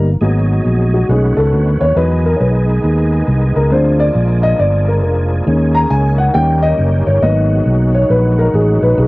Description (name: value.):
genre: gospel.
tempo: 137 BPM.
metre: 4/4.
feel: swing 64% on 8ths.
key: G# minor.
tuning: A4 = 442 Hz.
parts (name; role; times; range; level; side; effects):
dark concert grand piano; accompaniment; 0.0-9.1 s; F#3 to A#5; -15 LUFS; left 1 dB; none.
fingered electric bass; bass; 0.0-9.1 s; E#1 to E2; -13 LUFS; equal; none.
overdriven tonewheel organ; sustained chords; 0.2-9.1 s; D#3 to G#4; -23 LUFS; right 1 dB; slow rotary speaker, chorus vibrato.
warm French horn section; sustained chords; 0.2-9.1 s; F#3 to G#4; -23 LUFS; equal; none.
room: small room ambience.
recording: home recording on cassette.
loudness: -11 LUFS.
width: side -21 dB against mid.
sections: 0.2-9.1 A section.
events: grand piano solo 0.2-9.1.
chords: 0.2 G#m7; 1.1 B13; 2.0 Emaj7; 3.7 A#7; 5.5 D#7sus4; 6.3 D#7; 7.2 G#m7.